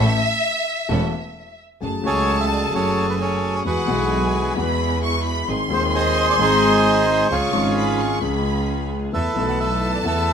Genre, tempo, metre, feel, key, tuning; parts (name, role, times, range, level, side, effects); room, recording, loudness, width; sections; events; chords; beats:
tango; 131 BPM; 4/4; rubato; F# minor; A4 = 442 Hz
rich studio violin section; second line; 0.0-10.3 s; E5 to C#6; -24 LUFS; left 1 dB
warm concert grand piano; accompaniment; 0.0-10.3 s; D#1 to A4; -24 LUFS; left 5 dB
rich studio string section; stabs; 0.0-10.3 s; A3 to A4; -32 LUFS; right 4 dB
clear double bass; bass; 0.0-10.3 s; E1 to E2; -24 LUFS; right 2 dB
bandoneon; melody; 2.1-10.3 s; C#4 to F#5; -20 LUFS; right 2 dB
moderate large studio reverb, RT60 1.0 s; minimal, uncompressed stereo recording; -18 LUFS; side -7 dB against mid
0.0-1.8 A section; 1.8-10.3 B section
violin section solo 0.0-1.8
0.0 A; 1.8 F#madd9; 3.7 Eadd9; 5.5 G#; 7.3 C#; 9.1 Esus4
0.44 0.90 1.36 | 1.82 2.28 2.74 3.19 | 3.65 4.11 4.57 5.02 | 5.48 5.94 6.39 6.85 | 7.30 7.76 8.22 8.68 | 9.14 9.60 10.05